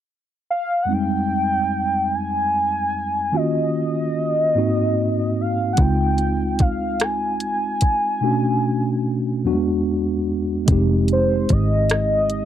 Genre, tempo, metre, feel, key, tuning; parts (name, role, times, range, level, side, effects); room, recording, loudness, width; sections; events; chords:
slow six-eight R&B; 49 BPM (dotted quarters); 6/8; straight; F minor; A4 = 440 Hz
warm velvety synth lead; melody; 0.5-12.5 s; C5 to Ab5; -22 LUFS; equal; chorus
mellow tine electric piano; accompaniment; 0.9-12.5 s; E2 to G4; -21 LUFS; equal; medium stereo tremolo
vintage muted fingered electric bass; bass; 5.8-12.5 s; F1 to Db2; -21 LUFS; equal
smooth R&B drum kit; drums; 5.8-12.5 s; hi-hat, kick drum, rim click; -18 LUFS; equal
little or no reverb; dry, close 1970s-style studio recording; -18 LUFS; side -10 dB against mid
0.9-10.7 A section; 10.7-12.5 B section
0.0 N.C.; 0.9 Fm9; 3.3 Ebm7; 4.6 Ab7; 5.8 Dbmaj9; 8.2 Bm7; 9.5 E9; 10.7 Fm9